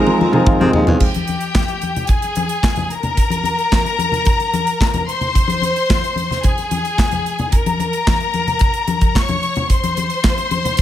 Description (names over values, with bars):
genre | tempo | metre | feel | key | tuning
disco | 110 BPM | 4/4 | straight | unclear | A4 = 440 Hz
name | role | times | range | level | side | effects
clear studio string section | second line | 0.0-10.8 s | G4 to Db6 | -20 LUFS | left 2 dB | none
warm concert grand piano | accompaniment | 0.0-1.0 s | F3 to F5 | -16 LUFS | equal | none
tonewheel organ | sustained chords | 0.0-1.0 s | Eb3 to F4 | -21 LUFS | right 2 dB | overdrive, fast rotary speaker
mellow horn section | stabs | 0.0-0.7 s | Ab3 to C5 | -23 LUFS | right 4 dB | none
modern studio drum kit | drums | 0.1-10.8 s | crash cymbal, handclaps, hi-hat, kick drum, snare drum, toms | -17 LUFS | right 1 dB | none
congas | percussion | 0.1-10.8 s | none | -23 LUFS | left 4 dB | none
warm baritone saxophone | bass | 0.2-1.0 s | Eb2 to C3 | -19 LUFS | right 1 dB | none
room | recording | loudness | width
light reverb, studio reverb | none | -15 LUFS | side -12 dB against mid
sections
0.0-1.0 A section; 1.0-10.8 B section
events
drum fill 0.0-1.0; grand piano fill 0.2-1.0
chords
0.0 Fm7; 1.0 N.C.; 5.1 Ab; 7.5 Bbm; 9.7 N.C.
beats
0.47 | 1.01 1.55 2.09 2.64 | 3.18 3.72 4.27 4.81 | 5.36 5.90 6.44 6.99 | 7.53 8.07 8.62 9.16 | 9.70 10.25 10.79